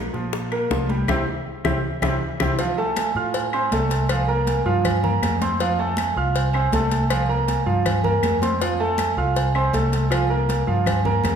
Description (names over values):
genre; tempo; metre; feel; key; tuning
latin, salsa; 159 BPM; 4/4; straight; F major; A4 = 445 Hz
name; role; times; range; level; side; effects
clear grand piano; accompaniment; 0.0-11.4 s; F3 to F6; -23 LUFS; right 2 dB; none
fretless electric bass; bass; 0.0-11.4 s; C2 to Bb2; -24 LUFS; left 1 dB; none
bongos and cowbell; percussion; 0.1-11.4 s; none; -30 LUFS; left 5 dB; none
congas; percussion; 0.3-11.4 s; none; -29 LUFS; left 2 dB; none
timbales and agogo bells; percussion; 0.3-11.4 s; none; -28 LUFS; right 6 dB; none
claves; percussion; 0.5-11.4 s; none; -33 LUFS; left 7 dB; none
room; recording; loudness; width
wet recital hall reverb, RT60 1.7 s; recorded in a church or concert hall; -19 LUFS; side -7 dB against mid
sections
0.0-2.6 A section; 2.6-11.4 B section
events
drum fill 1.1-2.6; band accent 1.1-2.6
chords
0.0 Bbsus2; 1.1 C; 2.6 F; 4.1 C7sus4; 5.6 F; 7.1 C7sus4; 8.6 F; 10.1 C7sus4